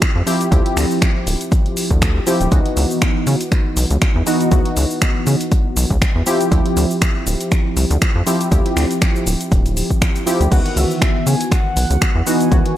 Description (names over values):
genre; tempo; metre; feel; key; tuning
deep house; 120 BPM; 4/4; swing 55% on 16ths; unclear; A4 = 440 Hz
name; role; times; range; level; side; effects
warm analog keys; stabs; 0.0-12.8 s; D#3 to G4; -19 LUFS; equal; chorus, sidechain pumping, tape echo
deep house drum kit; drums; 0.0-12.7 s; crash cymbal, finger snaps, hi-hat, shaker; -23 LUFS; equal; overdrive
electronic kick drum; drums; 0.0-12.6 s; none; -16 LUFS; equal; overdrive
rubbery square bass; bass; 0.2-12.6 s; D1 to C#3; -17 LUFS; equal; sidechain pumping
mellow horn-like synth lead; melody; 10.5-12.8 s; E5 to G#5; -26 LUFS; equal; lush chorus, analog delay
room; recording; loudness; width
light reverb, digital ambience; dry, gritty hardware recording; -14 LUFS; side -12 dB against mid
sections
0.0-12.8 A section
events
none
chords
0.0 Dm11; 2.5 C#m11; 6.3 Dm11; 10.5 C#m11